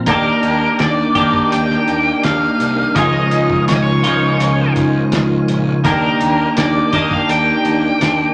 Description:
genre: psychedelic rock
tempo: 83 BPM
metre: 4/4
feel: straight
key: unclear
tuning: A4 = 440 Hz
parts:
  - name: tonewheel organ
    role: sustained chords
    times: 0.0-8.3 s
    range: Eb3 to G4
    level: -27 LUFS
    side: equal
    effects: overdrive, chorus vibrato, fast rotary speaker
  - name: twelve-string electric guitar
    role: riff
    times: 0.0-8.3 s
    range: Db3 to G4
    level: -18 LUFS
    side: equal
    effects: phaser
  - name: octave-fuzz lead guitar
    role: melody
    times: 0.1-8.3 s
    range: Bb4 to G5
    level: -20 LUFS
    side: equal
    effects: wah, distortion
  - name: fuzz picked electric bass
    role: bass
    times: 0.1-8.2 s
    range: Bb1 to Eb2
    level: -26 LUFS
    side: equal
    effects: overdrive
  - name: cloth-damped thuddy drum kit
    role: drums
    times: 0.1-8.2 s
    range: hi-hat, kick drum, snare drum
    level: -25 LUFS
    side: equal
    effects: none
room: moderate large studio reverb, RT60 1.2 s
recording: none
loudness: -15 LUFS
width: mono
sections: 0.0-8.3 A section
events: none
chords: 0.1 Ebmaj7; 3.0 Dbadd9; 5.8 Ebmaj7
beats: | 0.07 0.79 1.51 2.24 | 2.96 3.68 4.40 5.12 | 5.85 6.57 7.29 8.01

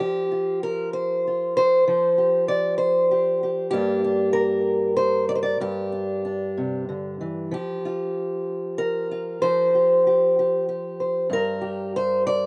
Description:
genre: folk, solo fingerstyle acoustic guitar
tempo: 64 BPM (dotted quarters)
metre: 6/8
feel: rubato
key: unclear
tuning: A4 = 435 Hz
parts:
  - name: fingerpicked acoustic archtop guitar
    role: solo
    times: 0.0-12.5 s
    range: G2 to D5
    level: -23 LUFS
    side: equal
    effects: slapback echo
room: little or no reverb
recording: recorded outdoors, with no room sound, nothing above 10.3 kHz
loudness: -23 LUFS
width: mono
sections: 0.0-7.5 A section; 7.5-12.5 A section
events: none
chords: 0.0 Fsus2; 3.7 Gm; 7.5 Fsus2; 11.3 Gm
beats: 0.94 | 1.87 2.79 | 3.72 4.66 | 5.60 6.57 | 7.53 8.48 | 9.44 10.38 | 11.31 12.24

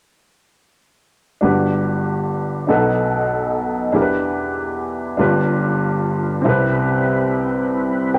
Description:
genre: gospel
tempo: 48 BPM (dotted quarters)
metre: 6/8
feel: straight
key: G major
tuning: A4 = 440 Hz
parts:
  - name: warm upright piano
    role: accompaniment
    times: 1.4-8.2 s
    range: G1 to G5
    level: -20 LUFS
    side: equal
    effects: none
  - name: tonewheel organ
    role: sustained chords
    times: 6.4-8.2 s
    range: G3 to B4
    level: -22 LUFS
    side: equal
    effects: fast rotary speaker, chorus vibrato
room: moderate studio reverb, RT60 0.9 s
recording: none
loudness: -19 LUFS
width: mono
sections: 1.4-8.2 A section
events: none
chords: 1.4 Gmaj7; 2.7 B7; 3.9 Em7; 5.2 G7; 6.5 Cmaj7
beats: | 1.42 2.68 | 3.94 5.19 | 6.45 7.71

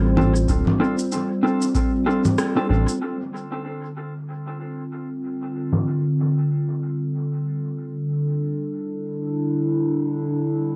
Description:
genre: ambient dub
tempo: 95 BPM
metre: 4/4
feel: swing 59% on 16ths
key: D minor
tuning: A4 = 439 Hz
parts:
  - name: warbly tape-like pad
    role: sustained chords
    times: 0.0-10.8 s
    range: D3 to C5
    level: -26 LUFS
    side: equal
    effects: chorus, built-in reverb, vintage 12-bit sampler grit
  - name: round analog bass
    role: bass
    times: 0.0-2.9 s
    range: D1 to A1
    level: -22 LUFS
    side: equal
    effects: none
  - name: mellow electric guitar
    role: stabs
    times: 0.2-2.9 s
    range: C4 to A4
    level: -28 LUFS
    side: equal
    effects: dub echo
  - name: electronic congas, shaker and rim click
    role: drums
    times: 0.2-5.8 s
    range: none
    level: -27 LUFS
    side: equal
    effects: low-pass filter on perc, cassette tape, low-pass filter on snare, low-pass filter on room, dub echo
  - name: electronic kick drum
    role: drums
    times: 0.5-1.9 s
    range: none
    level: -26 LUFS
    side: equal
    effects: cassette tape
room: moderate small room reverb, RT60 0.6 s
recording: home recording on cassette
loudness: -23 LUFS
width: mono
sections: 0.0-3.0 A section; 3.0-10.8 B section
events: band accent 2.4-2.7; filter sweep on ambient pad 3.0-10.8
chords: 0.0 Dm7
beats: | 0.49 1.12 1.75 2.38 | 3.01 3.64 4.28 4.91 | 5.54 6.17 6.80 7.43 | 8.06 8.70 9.33 9.96 | 10.59

